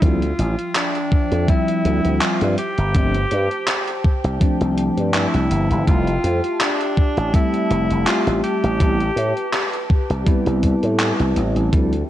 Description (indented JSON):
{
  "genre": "vaporwave",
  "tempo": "82 BPM",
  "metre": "4/4",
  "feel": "swing 54% on 16ths",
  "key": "unclear",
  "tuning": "A4 = 439 Hz",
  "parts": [
    { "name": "clear alto saxophone", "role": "melody", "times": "0.0-9.9 s", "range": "D4 to G4", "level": "-24 LUFS", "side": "equal", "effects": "tape echo" },
    { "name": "bell-like tine electric piano", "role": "accompaniment", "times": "0.0-11.9 s", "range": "F3 to E5", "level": "-23 LUFS", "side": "equal", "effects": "lush chorus, analog delay" },
    { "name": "warbly tape-like pad", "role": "sustained chords", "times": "0.6-12.1 s", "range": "F3 to A5", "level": "-28 LUFS", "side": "left 1 dB", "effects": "chorus, built-in reverb" },
    { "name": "slap bass with an envelope filter", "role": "bass", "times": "0.0-12.0 s", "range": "F1 to A2", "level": "-20 LUFS", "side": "equal", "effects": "none" },
    { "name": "electronic kick drum", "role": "drums", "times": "0.0-11.9 s", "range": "none", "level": "-17 LUFS", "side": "equal", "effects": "overdrive" },
    { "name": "gated 80s digital drum machine", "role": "drums", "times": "0.0-12.1 s", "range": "cabasa, handclaps, hi-hat", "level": "-24 LUFS", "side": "equal", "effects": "gated reverb, overdrive" }
  ],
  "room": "light reverb, digital ambience",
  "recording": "cassette tape",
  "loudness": "-16 LUFS",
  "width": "side -13 dB against mid",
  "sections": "0.0-12.1 A section",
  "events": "none",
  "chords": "0.0 Dm11; 2.6 G9sus4; 5.9 Fmaj9; 8.8 Am9"
}